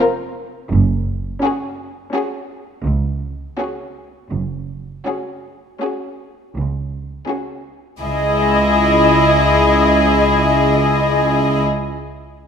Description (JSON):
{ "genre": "cinematic, suspense film score", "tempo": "83 BPM", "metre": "5/4", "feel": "straight", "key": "C# minor", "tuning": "A4 = 440 Hz", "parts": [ { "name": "warm symphonic violin section", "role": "melody", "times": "0.0-11.6 s", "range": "G#4 to A#4", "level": "-20 LUFS", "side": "left 6 dB", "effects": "none" }, { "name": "warm symphonic violin section", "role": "second line", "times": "0.0-11.6 s", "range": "E4 to F#4", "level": "-21 LUFS", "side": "left 3 dB", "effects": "none" }, { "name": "dark symphonic viola section", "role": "accompaniment", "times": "0.0-11.6 s", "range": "B#3 to D#5", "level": "-19 LUFS", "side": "equal", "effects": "none" }, { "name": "rich symphonic cello section", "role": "bass", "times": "0.7-11.6 s", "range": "C#2 to F#2", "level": "-21 LUFS", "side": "right 3 dB", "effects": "none" }, { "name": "warm symphonic double bass section", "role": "bass", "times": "0.7-11.6 s", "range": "F#1 to C#2", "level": "-21 LUFS", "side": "right 3 dB", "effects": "none" } ], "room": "moderate scoring stage reverb, RT60 2.0 s", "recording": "minimal, uncompressed stereo recording", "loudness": "-15 LUFS", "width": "side -7 dB against mid", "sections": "0.0-8.0 A section; 8.0-11.6 B section", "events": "none", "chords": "0.0 A#sus2; 0.7 F#sus2; 8.0 C#madd9", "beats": "| 0.71 1.43 2.14 2.85 3.58 | 4.32 5.07 5.81 6.55 7.28 | 8.01 8.72 9.43 10.15 10.87" }